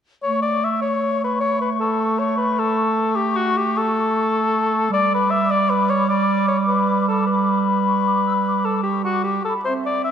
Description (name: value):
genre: cinematic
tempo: 102 BPM (dotted quarters)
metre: 12/8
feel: straight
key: A mixolydian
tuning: A4 = 440 Hz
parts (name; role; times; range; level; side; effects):
- clear clarinet; second line; 0.2-10.1 s; G3 to C4; -22 LUFS; right 6 dB; none
- mellow cor anglais; second line; 0.2-10.1 s; F#4 to E5; -20 LUFS; left 4 dB; none
- mellow flute section; second line; 0.2-10.1 s; E5 to E6; -26 LUFS; left 1 dB; none
room: wet scoring stage reverb, RT60 1.9 s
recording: dark, warm production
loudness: -17 LUFS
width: side -8 dB against mid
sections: 0.2-10.1 A section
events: none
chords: 0.2 A; 4.9 G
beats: | 0.25 0.84 1.42 2.00 | 2.59 3.17 3.75 4.33 | 4.91 5.49 6.07 6.66 | 7.26 7.86 8.45 9.05 | 9.65